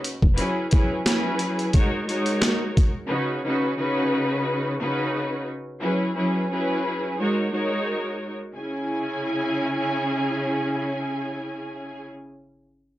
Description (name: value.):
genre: hip hop, boom-bap hip-hop.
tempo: 88 BPM.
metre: 4/4.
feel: swing 56% on 16ths.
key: C# minor.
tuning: A4 = 437 Hz.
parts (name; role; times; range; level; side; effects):
boom bap sampler-style drum kit; drums; 0.0-2.9 s; hi-hat, kick drum, snare drum; -21 LUFS; equal; none.
muted symphonic string section; accompaniment; 0.3-12.0 s; C#3 to G#5; -24 LUFS; equal; cassette tape, high-pass filter, low-pass filter.
room: little or no reverb.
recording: dry, gritty hardware recording, transformer saturation.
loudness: -22 LUFS.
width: side -14 dB against mid.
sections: 0.0-8.6 A section; 8.6-11.3 B section.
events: none.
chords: 0.4 F#9sus4; 1.7 G#9sus4; 3.1 C#9sus4; 5.8 F#9sus4; 7.2 G#9sus4; 8.6 C#m.